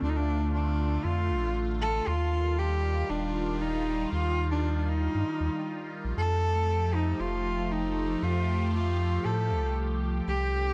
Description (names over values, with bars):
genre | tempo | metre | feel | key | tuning
IDM | 117 BPM | 4/4 | straight | unclear | A4 = 443 Hz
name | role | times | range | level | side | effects
rich cello | melody | 0.0-10.7 s | D4 to A4 | -33 LUFS | equal | vintage 12-bit sampler grit, delay
phased analog pad | sustained chords | 0.0-10.7 s | D3 to G4 | -37 LUFS | equal | phaser, chorus
warm sub bass | bass | 0.0-10.7 s | Eb1 to A2 | -31 LUFS | equal | none
room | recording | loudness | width
light reverb, studio reverb | dark, warm production | -29 LUFS | mono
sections
0.0-10.7 A section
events
none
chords
0.0 Dm; 2.1 Ebadd9; 6.2 Fadd9